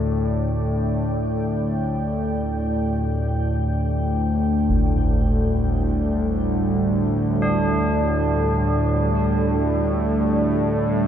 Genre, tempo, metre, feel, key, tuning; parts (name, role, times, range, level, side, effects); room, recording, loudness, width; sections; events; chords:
dark ambient drone; free time; A4 = 440 Hz
deep dark ambient pad; sustained chords; 0.0-11.1 s; G3 to G5; -25 LUFS; right 3 dB; chorus, built-in reverb, shimmer reverb
analog drone; drone; 0.0-11.1 s; D2 to A2; -21 LUFS; left 1 dB; chorus
concert bass drum; percussion; 4.7-4.9 s; -25 LUFS; equal; low-pass filter on kick
tubular bells; arpeggios; 7.4-11.1 s; D4; -26 LUFS; equal; tape echo, shimmer reverb
moderate huge ambient reverb, RT60 8.1 s; dark, warm production; -19 LUFS; side -9 dB against mid
0.0-11.1 A section
0.0 D5